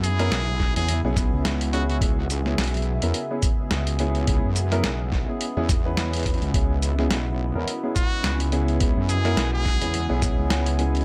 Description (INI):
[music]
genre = glitch hop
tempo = 106 BPM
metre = 4/4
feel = swing 57% on 16ths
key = C# minor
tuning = A4 = 440 Hz
[part]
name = brilliant trumpet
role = melody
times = 0.0-2.0, 8.0-10.1 s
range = F#4 to G#4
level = -32 LUFS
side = equal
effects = vintage 12-bit sampler grit, digital delay
[part]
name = warm analog pad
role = sustained chords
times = 0.0-11.0 s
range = C#3 to G#4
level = -36 LUFS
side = equal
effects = chorus, sidechain pumping
[part]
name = wobble bass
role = bass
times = 0.0-11.0 s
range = B1 to F#2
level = -26 LUFS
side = equal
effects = chorus
[part]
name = boom bap sampler-style drum kit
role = drums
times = 0.0-11.0 s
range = hi-hat, shaker, snare drum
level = -31 LUFS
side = equal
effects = none
[part]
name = deep dark ambient pad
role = texture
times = 0.1-11.0 s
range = C#4 to B5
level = -38 LUFS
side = equal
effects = none
[part]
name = dark concert grand piano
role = stabs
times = 0.2-11.0 s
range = B3 to B4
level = -31 LUFS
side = equal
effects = sidechain pumping, digital delay
[part]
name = electronic kick drum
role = drums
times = 0.6-10.4 s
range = none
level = -26 LUFS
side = equal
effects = none
[sound]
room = digital ambience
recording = none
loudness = -23 LUFS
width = mono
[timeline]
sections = 0.0-11.0 A section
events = none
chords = 0.0 C#m7